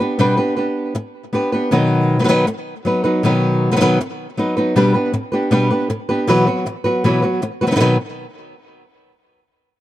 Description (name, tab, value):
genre	flamenco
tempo	158 BPM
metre	4/4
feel	straight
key	unclear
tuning	A4 = 440 Hz
part	flamenco guitar	melody	0.0-8.0 s	B2 to B4	-15 LUFS	equal	tape echo
room	little or no reverb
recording	dry, close 1970s-style studio recording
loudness	-15 LUFS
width	side -14 dB against mid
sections	0.0-7.8 A section; 7.8-9.3 B section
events	none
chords	0.0 G/B; 1.7 B; 4.8 G/B; 6.3 Bsus4; 7.8 N.C.